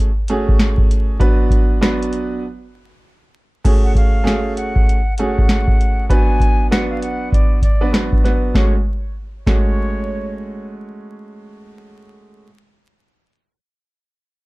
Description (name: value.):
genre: hip hop, boom-bap hip-hop.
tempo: 98 BPM.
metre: 4/4.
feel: swing 62% on 16ths.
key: F# minor.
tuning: A4 = 441 Hz.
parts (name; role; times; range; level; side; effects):
warm concert grand piano; accompaniment; 0.0-12.5 s; F#3 to B4; -22 LUFS; right 2 dB; high-pass filter, low-pass filter, plate reverb.
booming analog drum machine; drums; 0.0-9.7 s; crash cymbal, hi-hat, kick drum, snare drum; -15 LUFS; equal; none.
reedy silver concert flute; melody; 3.8-10.3 s; C#5 to G#5; -26 LUFS; left 1 dB; high-pass filter, low-pass filter, plate reverb, tape echo.
room: little or no reverb.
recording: dark, warm production, vinyl crackle.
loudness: -14 LUFS.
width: side -21 dB against mid.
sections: 0.0-3.6 A section; 3.6-8.5 B section; 8.5-11.0 C section.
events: break 2.4-3.6.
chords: 0.0 F#madd9; 1.2 Bm/F#; 3.6 F#madd9; 6.1 Bm/F#; 8.5 F#madd9.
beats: 0.59 | 1.20 1.81 2.43 3.04 | 3.65 4.26 4.88 5.49 | 6.10 6.71 7.32 7.94 | 8.55 9.16 9.77 10.38.